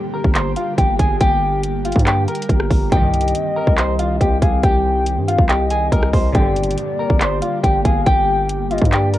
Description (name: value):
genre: hip hop, trap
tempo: 140 BPM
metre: 4/4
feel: half-time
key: unclear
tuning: A4 = 440 Hz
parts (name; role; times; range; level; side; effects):
- airy breathy pad; sustained chords; 0.0-9.2 s; D3 to G4; -25 LUFS; equal; chorus, cassette tape
- mellow electric guitar; melody; 0.1-9.2 s; F4 to C6; -20 LUFS; left 1 dB; spring reverb, cassette tape
- distorted 808-style bass; bass; 0.2-9.2 s; G1 to G2; -20 LUFS; equal; distortion
- trap drum kit; drums; 0.2-9.2 s; handclaps, hi-hat, kick drum, rim click; -17 LUFS; equal; cassette tape
- gliding portamento lead; second line; 2.9-9.2 s; D5 to G5; -24 LUFS; left 4 dB; chorus, cassette tape, tape echo
- muted studio string section; stabs; 2.9-3.2, 6.3-6.7 s; Bb1 to Eb3; -28 LUFS; right 1 dB; cassette tape, tape echo
room: light reverb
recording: home recording on cassette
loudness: -14 LUFS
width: side -14 dB against mid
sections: 0.0-9.2 A section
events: none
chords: 0.0 Gm; 2.9 Cm; 6.3 Gm